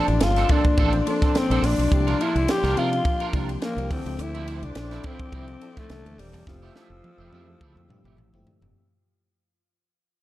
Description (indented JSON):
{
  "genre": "polished 1980s jazz-funk pop",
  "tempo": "105 BPM",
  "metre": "4/4",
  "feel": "swing 54% on 16ths",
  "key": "F major",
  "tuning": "A4 = 440 Hz",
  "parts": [
    { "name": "breathy alto saxophone", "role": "melody", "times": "0.0-8.4 s", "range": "F3 to G4", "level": "-26 LUFS", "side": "left 2 dB", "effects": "none" },
    { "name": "FM electric piano with soft pad layer", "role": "accompaniment", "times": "0.0-8.8 s", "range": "E3 to A4", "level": "-32 LUFS", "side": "left 2 dB", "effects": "wide subtle chorus" },
    { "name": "warm studio string section", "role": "sustained chords", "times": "0.0-8.7 s", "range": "Bb3 to E6", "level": "-37 LUFS", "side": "right 1 dB", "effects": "none" },
    { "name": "electric guitar at the edge of break-up", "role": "riff", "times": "0.0-8.7 s", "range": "F3 to Bb4", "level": "-31 LUFS", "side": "right 6 dB", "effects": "ensemble chorus" },
    { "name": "modern bright fingered electric bass", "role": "bass", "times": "0.1-8.7 s", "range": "Eb1 to C3", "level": "-26 LUFS", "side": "equal", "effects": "none" },
    { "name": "crisp fusion drum kit", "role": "drums", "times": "0.1-8.7 s", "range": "hi-hat, kick drum, ride cymbal, snare drum, toms", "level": "-25 LUFS", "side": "right 1 dB", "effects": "none" }
  ],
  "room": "light reverb, small room reverb",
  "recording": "dark, warm production",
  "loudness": "-20 LUFS",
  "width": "side -15 dB against mid",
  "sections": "0.0-8.7 A section",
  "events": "fade-out 0.0-8.7; drum fill 6.5-8.7",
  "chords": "0.0 Bbmaj9; 1.9 C9sus4; 3.9 Dm9; 5.9 C13; 6.5 Fmaj9"
}